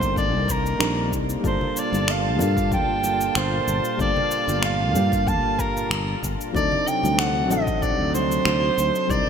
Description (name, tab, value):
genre	sunset chillout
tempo	94 BPM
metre	4/4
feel	swing 53% on 16ths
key	G minor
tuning	A4 = 441 Hz
part	warm soprano saxophone	melody	0.0-9.3 s	Bb4 to A5	-24 LUFS	right 2 dB	digital delay, shimmer reverb
part	soft electric-piano-like synth keys	accompaniment	0.0-9.3 s	F#3 to Bb4	-27 LUFS	moving between left 5 dB and right 6 dB	chorus, auto-pan, shimmer reverb
part	lush unison pad	sustained chords	0.0-9.3 s	Bb2 to A5	-31 LUFS	left 1 dB	chorus, shimmer reverb
part	sustaining fretless electric bass	bass	0.0-9.2 s	G1 to G2	-26 LUFS	left 1 dB	none
part	electronic cabasa and finger snaps	drums	0.0-9.2 s	none	-28 LUFS	left 1 dB	gated reverb
part	electronic kick drum	drums	0.0-9.2 s	none	-28 LUFS	equal	none
part	congas	percussion	1.6-9.3 s	none	-33 LUFS	left 3 dB	none
room	moderate lush hall reverb, RT60 2.8 s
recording	bright 1980s-style digital production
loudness	-20 LUFS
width	side -7 dB against mid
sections	0.0-9.3 A section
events	none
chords	0.0 Cm9; 1.4 Gm9; 6.5 D7b9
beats	0.16 0.80 | 1.44 2.08 2.71 3.35 | 3.99 4.63 5.27 5.91 | 6.54 7.18 7.82 8.46 | 9.10